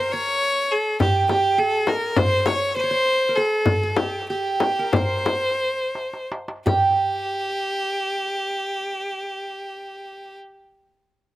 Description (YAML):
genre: Turkish makam ensemble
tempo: 165-206 BPM (eighths)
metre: 9/8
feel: straight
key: unclear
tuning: A4 = 440 Hz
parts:
  - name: bright violin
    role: melody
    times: 0.0-10.4 s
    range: G4 to Db5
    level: -23 LUFS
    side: left 1 dB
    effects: none
  - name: qanun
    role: second line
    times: 0.0-10.4 s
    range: G4 to Db5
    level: -24 LUFS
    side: right 3 dB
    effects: slapback echo
  - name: darbuka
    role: percussion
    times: 0.4-7.0 s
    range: none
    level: -26 LUFS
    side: equal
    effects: none
  - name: frame drum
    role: percussion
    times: 1.0-7.0 s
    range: none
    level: -23 LUFS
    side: left 4 dB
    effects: none
room: little or no reverb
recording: recorded outdoors, with no room sound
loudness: -20 LUFS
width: side -15 dB against mid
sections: 0.0-6.7 A section; 6.7-9.9 B section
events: slowing down 1.6-6.7; drum fill 6.0-6.7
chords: none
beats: 0.13 0.43 0.72 | 1.01 1.30 1.59 1.88 2.18 2.47 2.77 3.07 3.37 | 3.67 3.99 4.30 4.62 4.95 5.28 5.61 5.96 6.31 | 6.67 7.03 7.40 7.76 8.13 8.49 8.85 9.22 9.58